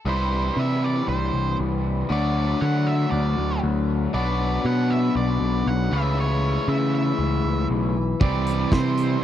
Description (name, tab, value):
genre	indie rock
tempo	118 BPM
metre	4/4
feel	straight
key	unclear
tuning	A4 = 440 Hz
part	octave-fuzz lead guitar	melody	0.1-9.2 s	C5 to F#5	-30 LUFS	right 4 dB	distortion, tape echo
part	raw garage guitar	riff	0.1-9.2 s	B2 to G4	-25 LUFS	left 4 dB	overdrive
part	growling picked electric bass	bass	0.1-9.2 s	B1 to D3	-23 LUFS	right 1 dB	overdrive
part	crunchy overdriven guitar	riff	8.2-9.2 s	C3 to G4	-26 LUFS	right 18 dB	wide subtle chorus
part	vintage drum kit	drums	8.2-9.1 s	hi-hat, kick drum, snare drum	-20 LUFS	equal	none
room	little or no reverb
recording	dry, close 1970s-style studio recording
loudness	-20 LUFS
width	side -11 dB against mid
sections	0.1-9.2 A section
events	none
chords	0.1 C; 2.1 D; 4.1 Bm; 5.9 A/C#; 8.2 C